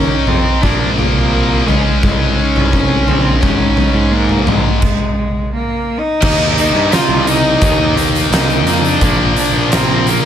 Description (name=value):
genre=quiet-loud alternative rock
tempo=86 BPM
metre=4/4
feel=straight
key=unclear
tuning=A4 = 440 Hz
part: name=clear cello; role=melody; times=0.0-10.3 s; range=Ab3 to F4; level=-18 LUFS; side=equal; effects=slapback echo
part: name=mellow electric guitar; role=arpeggios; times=0.0-4.8 s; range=Bb2 to Eb4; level=-22 LUFS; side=left 1 dB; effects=none
part: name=tight distorted guitar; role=riff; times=0.0-10.3 s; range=Ab2 to Eb4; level=-17 LUFS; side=left 1 dB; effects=distortion
part: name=fuzz picked electric bass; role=bass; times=0.0-10.2 s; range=Ab1 to Ab2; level=-18 LUFS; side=equal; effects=overdrive
part: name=oversized low-tuned drum kit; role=drums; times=0.3-10.2 s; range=crash cymbal, hi-hat, kick drum, snare drum, toms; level=-15 LUFS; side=equal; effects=none
room=light reverb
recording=none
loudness=-11 LUFS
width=side -9 dB against mid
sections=0.0-6.2 A section; 6.2-10.3 B section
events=stop 4.8-6.2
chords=0.0 Eb5; 0.6 Bb; 1.7 Dbsus2; 3.4 Absus2; 4.8 N.C.; 6.2 Eb5; 9.0 Bb5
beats=| 0.63 1.33 2.03 2.73 | 3.42 4.12 4.82 5.52 | 6.22 6.92 7.62 8.31 | 9.01 9.71